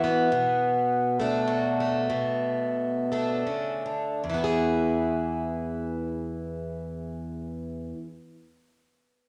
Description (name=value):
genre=folk, solo fingerstyle acoustic guitar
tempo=76-103 BPM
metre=3/4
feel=rubato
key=E major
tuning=A4 = 440 Hz
part: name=picked plugged-in twelve-string acoustic guitar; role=solo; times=0.0-8.1 s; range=E2 to A4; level=-28 LUFS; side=equal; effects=none
room=wet large studio reverb, RT60 1.2 s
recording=none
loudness=-28 LUFS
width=mono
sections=0.0-4.2 A section; 4.2-8.9 B section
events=slowing down 0.3-4.2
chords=0.3 Bm7; 4.2 E